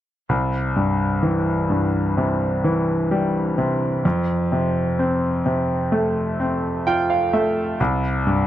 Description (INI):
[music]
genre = pop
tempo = 64 BPM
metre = 4/4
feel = straight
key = C major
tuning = A4 = 437 Hz
[part]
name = bright grand piano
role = accompaniment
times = 0.3-8.5 s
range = C2 to G5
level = -18 LUFS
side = equal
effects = none
[sound]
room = moderate booth ambience, RT60 0.2 s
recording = dry, close 1970s-style studio recording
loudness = -19 LUFS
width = side -12 dB against mid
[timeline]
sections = 0.3-8.5 A section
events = grand piano fill 6.4-7.8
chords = 0.3 C; 4.0 F; 7.8 C5